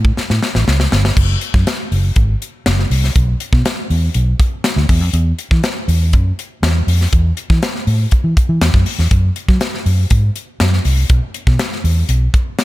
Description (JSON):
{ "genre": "polished 1980s jazz-funk pop", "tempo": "121 BPM", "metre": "4/4", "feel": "straight", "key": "unclear", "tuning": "A4 = 439 Hz", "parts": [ { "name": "vintage muted fingered electric bass", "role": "bass", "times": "0.0-12.3 s", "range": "F#1 to F#3", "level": "-14 LUFS", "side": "equal", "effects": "none" }, { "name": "crisp fusion drum kit", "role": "drums", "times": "0.0-12.6 s", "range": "crash cymbal, hi-hat, kick drum, snare drum", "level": "-16 LUFS", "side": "equal", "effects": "none" } ], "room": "little or no reverb", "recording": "none", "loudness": "-13 LUFS", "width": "side -17 dB against mid", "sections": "0.0-1.2 A section; 1.2-12.6 B section", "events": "drum fill 0.2-1.2", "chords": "none" }